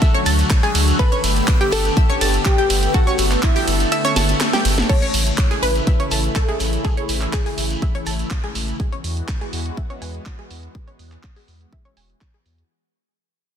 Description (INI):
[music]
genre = progressive house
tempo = 123 BPM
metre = 4/4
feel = straight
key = A major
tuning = A4 = 440 Hz
[part]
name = wide unison pluck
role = melody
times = 0.0-8.7 s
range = E4 to C#5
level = -26 LUFS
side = left 1 dB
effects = vintage 12-bit sampler grit, ping-pong delay
[part]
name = soft synth bell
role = second line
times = 0.0-4.8 s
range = E5 to B5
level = -30 LUFS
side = left 1 dB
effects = chorus, sidechain pumping, ping-pong delay
[part]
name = lush unison pad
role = sustained chords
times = 0.0-12.7 s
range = C#3 to A4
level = -25 LUFS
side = equal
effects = chorus, phaser, sidechain pumping
[part]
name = analog pluck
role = arpeggios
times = 0.0-12.4 s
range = G4 to A6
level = -25 LUFS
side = right 1 dB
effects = chorus, cassette tape, sidechain pumping, ping-pong delay
[part]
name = electronic kick drum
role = drums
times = 0.0-12.3 s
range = none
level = -18 LUFS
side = equal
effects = none
[part]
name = house drum kit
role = drums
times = 0.0-12.7 s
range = crash cymbal, handclaps, hi-hat, ride cymbal, snare drum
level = -24 LUFS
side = right 2 dB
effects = low-pass filter on hats, soft clipping on snare, low-pass filter on snare, low-pass filter on cymbals, low-pass filter on room
[part]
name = shekere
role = percussion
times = 0.0-8.8 s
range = none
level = -31 LUFS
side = right 1 dB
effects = none
[part]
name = backwards swelling texture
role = texture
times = 0.0-4.9 s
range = E5 to E6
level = -38 LUFS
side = left 2 dB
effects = none
[part]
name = round analog bass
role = bass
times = 0.3-12.6 s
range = E1 to E2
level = -21 LUFS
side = equal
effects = sidechain pumping
[sound]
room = light reverb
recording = dense, heavily limited modern master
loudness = -16 LUFS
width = side -8 dB against mid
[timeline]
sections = 0.0-4.9 A section; 4.9-12.7 B section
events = drop 0.0-4.9; kick drops out 3.9-4.9; drum fill 4.2-4.9; fade-out 4.9-12.7; filter sweep on synth arpeggio sound 4.9-12.7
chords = 0.0 D; 1.0 Gadd9; 4.9 A; 8.8 Eadd9